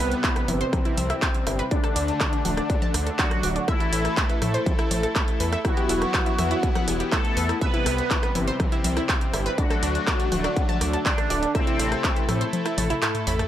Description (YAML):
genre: melodic techno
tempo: 122 BPM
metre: 4/4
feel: straight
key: unclear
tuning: A4 = 440 Hz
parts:
  - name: resonant sweep polysynth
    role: melody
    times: 0.0-12.4 s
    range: C4 to B4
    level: -30 LUFS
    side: left 1 dB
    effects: chorus, sidechain pumping, digital delay
  - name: soft supersaw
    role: second line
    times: 0.0-12.4 s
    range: C3 to B3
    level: -34 LUFS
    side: equal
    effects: cassette tape, sidechain pumping, digital delay
  - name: wide unison pluck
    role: arpeggios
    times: 0.0-13.4 s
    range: D4 to A6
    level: -30 LUFS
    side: right 1 dB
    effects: sidechain pumping, digital delay
  - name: brassy analog pad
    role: stabs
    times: 0.0-13.5 s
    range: C3 to A4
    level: -30 LUFS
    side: left 2 dB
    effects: chorus, sidechain pumping, digital delay
  - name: gritty driven synth bass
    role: bass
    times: 0.0-13.4 s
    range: D1 to A2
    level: -27 LUFS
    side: equal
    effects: sidechain pumping
  - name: techno drum kit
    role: drums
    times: 0.1-13.5 s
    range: congas, handclaps, hi-hat, rim click, toms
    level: -28 LUFS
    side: equal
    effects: overdrive
  - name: electronic kick drum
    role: drums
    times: 0.2-12.1 s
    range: none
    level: -25 LUFS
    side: equal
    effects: distortion, overdrive
room: light reverb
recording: none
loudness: -21 LUFS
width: side -11 dB against mid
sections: 0.0-13.5 A section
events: kick drops out 12.5-13.5; drum fill 12.8-13.5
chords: 0.0 Cmaj7; 1.7 D; 3.7 Asus2; 5.6 Emadd9; 7.6 Cmaj7; 9.6 D; 11.5 Amadd9